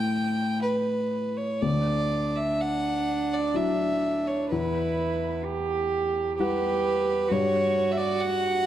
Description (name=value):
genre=celtic folk, Celtic slow air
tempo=58-67 BPM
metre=3/4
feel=rubato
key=D major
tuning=A4 = 440 Hz
part: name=rich fiddle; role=melody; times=0.0-8.7 s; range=B4 to G5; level=-27 LUFS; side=right 1 dB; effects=none
part: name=felt-muted upright piano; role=accompaniment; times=0.0-8.7 s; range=D2 to F#5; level=-29 LUFS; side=left 3 dB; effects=none
part: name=rich cello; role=second line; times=1.6-8.7 s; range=D4 to G4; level=-28 LUFS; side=right 5 dB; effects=none
room=wet recital hall reverb, RT60 1.3 s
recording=dark, warm production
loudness=-24 LUFS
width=side -11 dB against mid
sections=0.0-1.6 A section; 1.6-8.7 A section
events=none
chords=0.0 N.C.; 1.6 Dadd9; 4.5 Emadd9; 7.3 N.C.